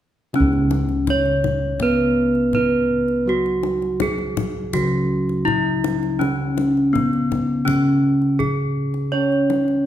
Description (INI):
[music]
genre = Javanese gamelan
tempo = 82 BPM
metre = 4/4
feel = straight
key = C# slendro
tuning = A4 = 441 Hz
[part]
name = gamelan-type bronze metallophone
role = accompaniment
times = 0.3-9.9 s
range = C#3 to C#4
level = -23 LUFS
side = equal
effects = none
[part]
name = kendang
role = percussion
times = 0.3-9.8 s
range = none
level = -29 LUFS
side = left 5 dB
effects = none
[part]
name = gamelan-type bronze metallophone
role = melody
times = 0.4-9.9 s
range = B3-25c to C#5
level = -20 LUFS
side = right 1 dB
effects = none
[part]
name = gamelan-type bossed gongs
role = bass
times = 0.4-9.9 s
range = C#2 to C#5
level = -24 LUFS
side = equal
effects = none
[sound]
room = wet recital hall reverb, RT60 1.4 s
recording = recorded in a church or concert hall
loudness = -17 LUFS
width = side -11 dB against mid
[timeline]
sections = 0.3-9.9 A section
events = none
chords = none